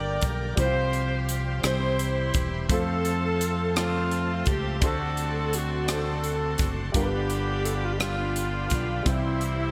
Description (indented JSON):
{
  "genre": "slow gospel",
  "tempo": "56 BPM (dotted quarters)",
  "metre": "6/8",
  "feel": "straight",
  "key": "F major",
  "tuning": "A4 = 441 Hz",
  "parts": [
    { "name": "breathy alto saxophone", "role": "melody", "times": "0.0-9.7 s", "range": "E4 to D5", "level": "-34 LUFS", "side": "equal", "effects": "none" },
    { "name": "bright saxophone section", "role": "melody", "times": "0.0-9.7 s", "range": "G3 to D5", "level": "-34 LUFS", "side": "equal", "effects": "delay" },
    { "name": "warm upright piano", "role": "accompaniment", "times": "0.0-9.7 s", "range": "G2 to D5", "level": "-36 LUFS", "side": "equal", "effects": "analog chorus" },
    { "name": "bright tonewheel organ", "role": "sustained chords", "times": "0.0-9.7 s", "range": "D3 to A4", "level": "-39 LUFS", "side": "equal", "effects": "slow rotary speaker, overdrive, chorus vibrato" },
    { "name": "pipe organ, strings celeste", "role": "sustained chords", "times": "0.0-9.7 s", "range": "C5 to D6", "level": "-42 LUFS", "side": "equal", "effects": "none" },
    { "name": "fingered electric bass", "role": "bass", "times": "0.0-9.7 s", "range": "E1 to F2", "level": "-32 LUFS", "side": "equal", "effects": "none" },
    { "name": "crisp fusion drum kit", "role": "drums", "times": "0.2-9.6 s", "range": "hi-hat, kick drum, rim click", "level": "-31 LUFS", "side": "equal", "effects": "gated reverb" }
  ],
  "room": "light reverb",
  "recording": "bright 1980s-style digital production",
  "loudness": "-26 LUFS",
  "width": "mono",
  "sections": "0.0-9.7 A section",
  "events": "none",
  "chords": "0.0 Gm; 0.6 Csus4; 1.6 C; 2.7 F; 4.8 D7; 6.9 G7; 9.1 C"
}